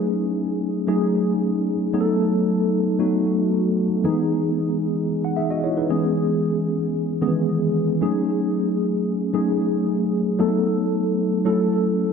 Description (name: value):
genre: pop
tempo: 113 BPM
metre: 4/4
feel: swing 54% on 16ths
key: F# dorian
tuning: A4 = 440 Hz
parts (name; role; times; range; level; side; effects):
- mellow tine electric piano; solo; 0.0-12.1 s; D#3 to F#5; -19 LUFS; equal; fast stereo tremolo, analog chorus, ping-pong delay
room: moderate lush hall reverb, RT60 2.8 s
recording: dark, warm production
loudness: -19 LUFS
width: side -6 dB against mid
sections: 0.0-12.1 A section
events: none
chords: 0.0 F#m69; 1.9 B7; 4.0 Emaj7; 5.9 C#m7; 8.0 F#m69; 10.4 B7; 11.5 F#m7